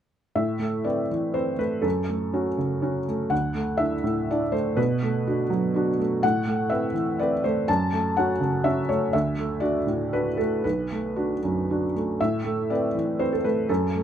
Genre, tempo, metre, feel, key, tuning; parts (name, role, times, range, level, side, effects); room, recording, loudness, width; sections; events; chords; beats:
neoclassical minimalist piano; 123 BPM; 3/4; rubato; A dorian; A4 = 440 Hz
felt-muted upright piano; solo; 0.4-14.0 s; B1 to A5; -22 LUFS; equal
light reverb; close, detailed microphones; -22 LUFS; side -9 dB against mid
0.4-12.2 A section; 12.2-14.0 A section
0.4 Amadd9; 1.8 F#m; 3.3 Dadd9; 4.8 Bm7; 6.2 Amadd9; 7.7 F#m; 9.1 Dadd9; 10.6 Bm7; 12.2 Amadd9
| 0.36 0.86 1.35 | 1.84 2.33 2.82 | 3.31 3.80 4.29 | 4.77 5.25 5.74 | 6.23 6.70 7.19 | 7.67 8.16 8.64 | 9.13 9.62 10.12 | 10.63 11.15 11.67 | 12.19 12.69 13.19 | 13.69